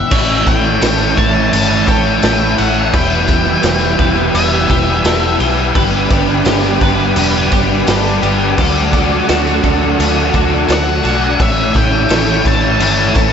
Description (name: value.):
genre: rock, shoegaze and dream pop.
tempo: 85 BPM.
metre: 4/4.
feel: straight.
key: A mixolydian.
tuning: A4 = 443 Hz.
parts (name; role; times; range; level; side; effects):
octave-fuzz lead guitar; melody; 0.0-5.4, 10.7-13.3 s; E5 to A5; -18 LUFS; left 1 dB; distortion, tape echo.
twelve-string electric guitar; arpeggios; 0.0-13.3 s; F#4 to G5; -24 LUFS; right 3 dB; lush chorus, tape echo.
overdriven semi-hollow guitar; riff; 0.0-13.3 s; E2 to G4; -17 LUFS; left 8 dB; ensemble chorus.
overdriven semi-hollow guitar; riff; 0.0-13.3 s; G2 to B4; -19 LUFS; right 10 dB; reverse reverb.
analog string pad; sustained chords; 0.1-13.3 s; A4 to E6; -22 LUFS; equal; ensemble chorus.
vintage muted fingered electric bass; bass; 0.1-13.3 s; E1 to D2; -19 LUFS; equal; none.
raw garage drum kit; drums; 0.1-13.3 s; crash cymbal, kick drum, snare drum; -16 LUFS; equal; none.
tambourine; percussion; 0.1-13.3 s; none; -33 LUFS; right 6 dB; none.
room: moderate lush hall reverb, RT60 2.9 s.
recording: dreamy mix soaked in reverb, nothing above 7.8 kHz.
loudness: -10 LUFS.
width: side -7 dB against mid.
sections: 0.1-13.3 A section.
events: none.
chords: 0.1 A; 2.9 Em; 5.8 G; 8.6 D; 11.4 A.